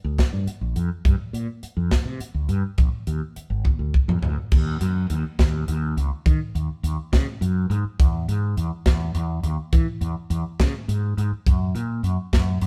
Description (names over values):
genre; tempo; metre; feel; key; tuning
electric jazz fusion; 69 BPM (dotted quarters); 6/8; straight; Bb mixolydian; A4 = 438 Hz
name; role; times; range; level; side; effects
mellow fretless electric bass; bass; 0.0-12.7 s; Ab1 to E3; -26 LUFS; equal; none
crisp fusion drum kit; drums; 0.2-12.7 s; crash cymbal, hi-hat, kick drum, snare drum, toms; -23 LUFS; equal; none
room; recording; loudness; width
light reverb; band playing live in one room; -23 LUFS; mono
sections
0.0-4.5 A section; 4.5-12.7 B section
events
drum fill 3.7-4.5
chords
none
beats
0.18 | 1.05 1.92 | 2.79 3.65 | 4.52 5.39 | 6.26 7.13 | 7.99 8.86 | 9.73 10.60 | 11.46 12.33